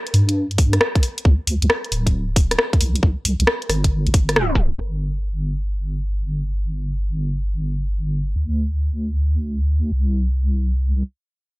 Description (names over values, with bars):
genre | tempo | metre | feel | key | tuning
UK garage, two-step garage | 135 BPM | 4/4 | swing 67% on 16ths | unclear | A4 = 439 Hz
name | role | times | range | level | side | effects
deep soft wobble bass | bass | 0.1-11.0 s | D1 to G2 | -20 LUFS | equal | chorus, sidechain pumping
garage drum kit | drums | 0.1-4.8 s | hi-hat, rim click | -20 LUFS | equal | small room ambience
electronic kick drum | drums | 0.6-4.6 s | none | -16 LUFS | equal | small room ambience
room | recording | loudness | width
little or no reverb | dry, gritty hardware recording, transformer saturation, cassette tape, low-pass filter, tape stop | -18 LUFS | side -21 dB against mid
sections
0.0-4.8 A section; 4.8-11.6 B section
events
band accent 4.4; tape stop 4.4-4.8; filter sweep 4.8-11.6; stop 11.0-11.6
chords
none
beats
0.36 0.81 | 1.25 1.70 2.14 2.58 | 3.03 3.47 3.92 4.36 | 4.81 5.25 5.70 6.14 | 6.58 7.03 7.47 7.92 | 8.36 8.81 9.25 9.70 | 10.14 10.58